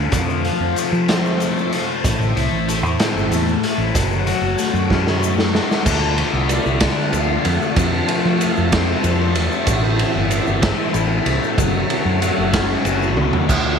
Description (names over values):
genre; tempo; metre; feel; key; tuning
psychedelic rock; 63 BPM (dotted quarters); 6/8; straight; unclear; A4 = 440 Hz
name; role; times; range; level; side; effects
string machine, cellos; sustained chords; 0.0-13.8 s; D4 to A5; -26 LUFS; right 8 dB; ensemble chorus
thick fuzz guitar; riff; 0.0-13.8 s; A2 to F#4; -21 LUFS; left 10 dB; distortion, phaser
fingered electric bass; bass; 0.0-13.8 s; F#1 to F3; -21 LUFS; right 1 dB; none
raw garage drum kit; drums; 0.1-13.6 s; crash cymbal, hi-hat, kick drum, ride cymbal, snare drum, toms; -20 LUFS; right 2 dB; none
tube shaker; percussion; 0.1-13.6 s; none; -36 LUFS; left 14 dB; none
room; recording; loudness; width
light reverb; 1960s-style stereo with parts hard left and right; -16 LUFS; side -6 dB against mid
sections
0.0-5.9 A section; 5.9-13.8 B section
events
drum fill 4.9-5.9, 13.2-13.5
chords
0.1 F; 2.0 Am; 4.0 F#m; 5.9 Dm; 7.8 F; 9.7 Am; 11.6 F#m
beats
| 0.13 1.09 | 2.04 3.00 | 3.95 4.91 | 5.86 6.81 | 7.77 8.72 | 9.68 10.63 | 11.58 12.54 | 13.49